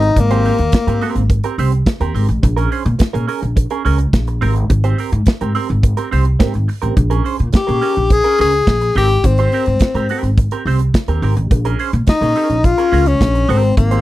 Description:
disco; 106 BPM; 4/4; straight; A4 = 440 Hz
clear tenor saxophone; melody; 0.0-1.3, 7.6-14.0 s; Bb3 to Ab4; -15 LUFS; left 3 dB; slapback echo
clean electric guitar; accompaniment; 0.0-14.0 s; C4 to C5; -22 LUFS; right 8 dB; wah
upright bass; bass; 0.0-14.0 s; Ab1 to Bb2; -16 LUFS; equal
modern studio drum kit; drums; 0.0-14.0 s; hi-hat, kick drum, snare drum; -13 LUFS; equal
little or no reverb; dry, close 1970s-style studio recording; -13 LUFS; side -16 dB against mid
0.0-14.0 A section
0.0 Abmaj9; 2.4 Bbm7; 4.4 Abmaj9; 7.0 Bbm7; 9.0 Abmaj9; 11.5 Bbm7; 13.5 Abmaj9

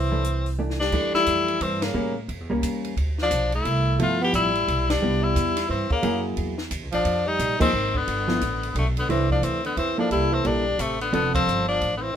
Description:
jazz, small-group swing and bop; 176 BPM; 3/4; swing 63% on 8ths; C major; A4 = 444 Hz
edgy tenor saxophone; melody; 0.0-12.2 s; A3 to G4; -24 LUFS; left 4 dB
mellow tenor saxophone; second line; 0.0-12.2 s; C3 to B3; -28 LUFS; right 3 dB
upright bass; bass; 0.0-12.1 s; F1 to A2; -27 LUFS; right 1 dB
hollow-body jazz guitar; accompaniment; 0.1-11.6 s; E3 to A4; -27 LUFS; right 1 dB
compact cocktail drum kit; drums; 0.2-11.9 s; crash cymbal, hi-hat, kick drum, ride cymbal, snare drum; -32 LUFS; equal
moderate studio reverb, RT60 0.7 s; minimal, uncompressed stereo recording; -21 LUFS; side -9 dB against mid
0.9-9.1 A section; 9.1-12.2 B section
drum fill 0.6-0.9; band accent 1.8, 4.8, 7.6, 11.3
0.0 C69; 0.9 G7sus2/E; 1.9 A7b9; 3.0 Dm7; 4.0 G13; 5.0 Cmaj7; 6.0 F#9; 7.0 Fm11; 8.1 Gadd9; 9.1 C69; 10.1 C13; 11.1 F6

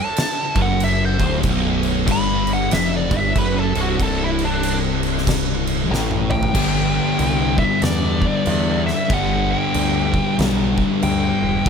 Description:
stoner and doom metal; 94 BPM; 4/4; swing 62% on 8ths; A4 = 440 Hz
fuzz lead guitar; melody; 0.0-11.7 s; D4 to B5; -24 LUFS; equal; wah, distortion, tape echo
oversized low-tuned drum kit; drums; 0.2-11.7 s; crash cymbal, kick drum, snare drum, toms; -23 LUFS; right 1 dB
distorted electric guitar; riff; 0.6-11.7 s; B1 to G4; -26 LUFS; equal; distortion
thick fuzz guitar; riff; 0.6-11.7 s; B1 to G3; -23 LUFS; left 12 dB; distortion
thick fuzz guitar; riff; 0.6-11.7 s; B1 to G3; -25 LUFS; right 9 dB; distortion
growling picked electric bass; bass; 0.6-11.7 s; B0 to E2; -24 LUFS; equal; overdrive
light reverb; -16 LUFS; side -6 dB against mid
0.0-6.5 A section; 6.5-11.7 B section
lead electric guitar solo 0.0-6.5; drum fill 5.9-6.5
0.0 C5; 1.4 B5; 6.5 G

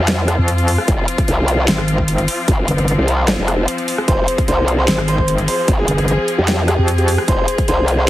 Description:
heavy wobble dubstep; 150 BPM; 4/4; half-time; F minor; A4 = 436 Hz
clear studio string section; sustained chords; 0.0-8.1 s; F3 to Ab4; -22 LUFS; left 2 dB; sidechain pumping
growl bass; bass; 0.0-8.1 s; F1 to F2; -16 LUFS; equal; chorus, overdrive
big-room dance drum kit; drums; 0.1-8.0 s; hi-hat, rim click, snare drum; -21 LUFS; equal
metallic wobble bass; bass; 0.4-7.2 s; G1 to F2; -16 LUFS; equal; chorus, overdrive
electronic kick drum; drums; 0.9-7.7 s; -18 LUFS; equal
clear grand piano; melody; 4.1-8.1 s; G4 to C5; -20 LUFS; equal; ping-pong delay
light reverb; heavily compressed radio sound, multiband compression, faint mains hum; -14 LUFS; side -14 dB against mid
0.0-8.1 A section
0.0 Fm

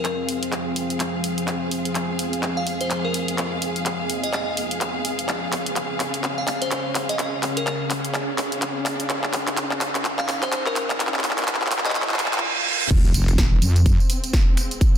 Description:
bass house; 126 BPM; 4/4; swing 59% on 16ths; F minor; A4 = 440 Hz
glassy synth bell; melody; 0.0-12.0 s; Bb4 to F5; -29 LUFS; left 1 dB; chorus, dub echo
deep dark ambient pad; sustained chords; 0.0-15.0 s; Db3 to F5; -30 LUFS; equal; chorus, built-in reverb, sidechain pumping
big-room dance drum kit; drums; 0.0-15.0 s; crash cymbal, finger snaps, handclaps, hi-hat, snare drum, tambourine; -25 LUFS; equal; studio reverb
riser, reverse cymbal and sub drop; sound effects; 2.2-14.8 s; -31 LUFS; right 2 dB
warm studio string section; texture; 0.0-15.0 s; C4 to F5; -30 LUFS; equal; sidechain pumping
wobble bass; bass; 12.9-14.0 s; Eb1 to F2; -18 LUFS; equal; chorus, sidechain pumping
electronic kick drum; drums; 12.9-14.9 s; -18 LUFS; equal; studio reverb
moderate digital room reverb, RT60 1.1 s; dense, heavily limited modern master, high-pass filter; -20 LUFS; side -9 dB against mid
0.0-12.9 A section; 12.9-15.0 B section
build-up 0.0-12.9; drum fill 0.0-12.4; riser 2.2-12.9; reverse cymbal 12.0-12.9; drop 12.9-15.0; impact 12.9-14.8
0.0 Fm; 5.3 Db; 12.9 Fm

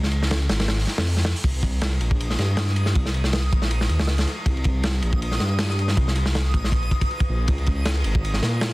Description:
drum and bass, jungle; 159 BPM; 4/4; swing 53% on 16ths; C phrygian; A4 = 440 Hz
dark detuned saw bass; bass; 0.0-8.7 s; Ab1 to Bb2; -22 LUFS; equal
crunchy breakbeat drum kit; drums; 0.0-8.7 s; hi-hat, kick drum, ride cymbal, snare drum; -23 LUFS; equal
backwards swelling texture; texture; 2.2-8.7 s; Eb6; -34 LUFS; equal; built-in reverb
little or no reverb; dense, heavily limited modern master, vinyl crackle; -20 LUFS; side -20 dB against mid
0.0-8.7 A section
0.0 Db; 1.4 Cm7; 7.5 Dbsus2

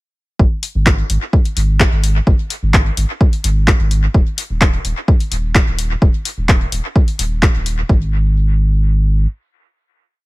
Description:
dub techno; 128 BPM; 4/4; straight; A4 = 436 Hz
warm sub bass; bass; 0.4-9.3 s; D#1 to G#1; -16 LUFS; equal; sidechain pumping
electronic kick drum; drums; 0.4-8.0 s; -12 LUFS; equal; overdrive
punchy analog drum machine; drums; 0.6-7.8 s; handclaps, hi-hat; -19 LUFS; left 1 dB; overdrive, dub echo
digital ambience; echo-heavy mix; -13 LUFS; side -21 dB against mid
0.4-7.9 groove; 7.9-10.3 final note

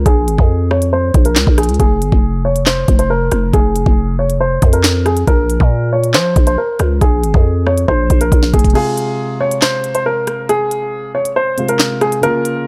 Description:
hip hop, drill; 138 BPM; 4/4; half-time; F minor; A4 = 443 Hz
warm upright piano; melody; 0.0-12.7 s; Ab4 to Db5; -19 LUFS; equal; low-pass filter
growling 808-style bass; bass; 0.0-8.7 s; F1 to F3; -18 LUFS; equal
drill drum kit; drums; 0.1-12.6 s; crash cymbal, handclaps, hi-hat, kick drum, rim click, snare drum; -16 LUFS; equal
warm concert grand piano; accompaniment; 8.7-12.7 s; C3 to F4; -24 LUFS; equal; low-pass filter
little or no reverb; dark, warm production, faint mains hum; -14 LUFS; mono
0.0-12.7 A section
filter sweep 0.0-8.8; drum fill 7.9-8.8; break 8.8-12.7
0.0 Bb5; 1.8 Fm; 5.3 Bb5; 8.8 Fm

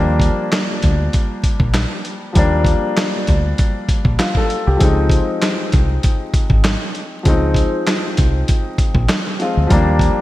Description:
hip hop, boom-bap hip-hop; 98 BPM; 4/4; swing 55% on 16ths; A4 = 441 Hz
warm upright piano; accompaniment; 0.0-10.2 s; F3 to A4; -20 LUFS; left 2 dB; cassette tape, high-pass filter, low-pass filter
deep dub fingered electric bass; bass; 0.0-10.1 s; Ab1 to Eb2; -16 LUFS; equal
dusty soul sampler-style drum kit; drums; 0.2-10.2 s; handclaps, hi-hat, kick drum, snare drum; -16 LUFS; equal; gated reverb
light reverb; bright 1980s-style digital production, vinyl crackle; -14 LUFS; side -16 dB against mid
0.0-10.2 A section
0.0 Ebmaj9; 4.8 Dbmaj9; 9.7 Ebmaj9

